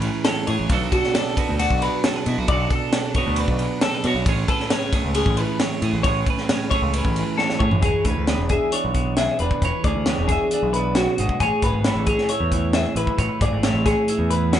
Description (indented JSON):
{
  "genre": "math rock and midwest emo",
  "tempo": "134 BPM",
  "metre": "4/4",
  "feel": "straight",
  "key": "A major",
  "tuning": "A4 = 441 Hz",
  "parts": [
    { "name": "twelve-string electric guitar", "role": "accompaniment", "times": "0.0-14.6 s", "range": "A2 to E5", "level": "-25 LUFS", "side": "right 5 dB", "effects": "none" },
    { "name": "twelve-string electric guitar", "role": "arpeggios", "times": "0.0-14.6 s", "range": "F#4 to E5", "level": "-24 LUFS", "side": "left 3 dB", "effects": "none" },
    { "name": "growling picked electric bass", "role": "bass", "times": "0.0-14.6 s", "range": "E1 to B2", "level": "-24 LUFS", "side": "equal", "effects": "overdrive" },
    { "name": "crisp fusion drum kit", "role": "drums", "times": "0.0-14.6 s", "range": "hi-hat, kick drum, ride cymbal, snare drum, toms", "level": "-23 LUFS", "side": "equal", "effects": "none" }
  ],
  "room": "light reverb",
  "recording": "band playing live in one room, nothing above 10.8 kHz",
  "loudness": "-18 LUFS",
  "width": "side -10 dB against mid",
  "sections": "0.0-7.8 A section; 7.8-14.6 B section",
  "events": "drum fill 7.4-7.8",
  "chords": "0.0 Amaj7; 0.7 Bm9; 4.3 Amaj7; 7.8 E13; 11.4 Amaj9",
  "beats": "0.24 | 0.69 1.14 1.59 2.03 | 2.48 2.93 3.38 3.82 | 4.27 4.71 5.16 5.61 | 6.05 6.50 6.95 7.39 | 7.84 8.29 8.73 9.18 | 9.63 10.07 10.52 10.97 | 11.41 11.86 12.31 12.75 | 13.20 13.65 14.09 14.54"
}